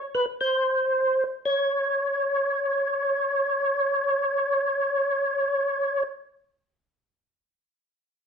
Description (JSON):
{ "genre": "jazz", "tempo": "free time", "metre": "none", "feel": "none", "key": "unclear", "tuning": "A4 = 441 Hz", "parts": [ { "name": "percussive tonewheel organ", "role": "solo", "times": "0.1-6.0 s", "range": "Cb5 to Db5", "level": "-22 LUFS", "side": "equal", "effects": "slow rotary speaker, chorus vibrato" } ], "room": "wet studio reverb, RT60 0.7 s", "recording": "heard from further back in the room, nothing above 10.3 kHz", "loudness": "-22 LUFS", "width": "side -6 dB against mid", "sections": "0.0-1.4 A section; 1.4-5.4 B section", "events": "slowing down 0.0-1.4", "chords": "none", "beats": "free time" }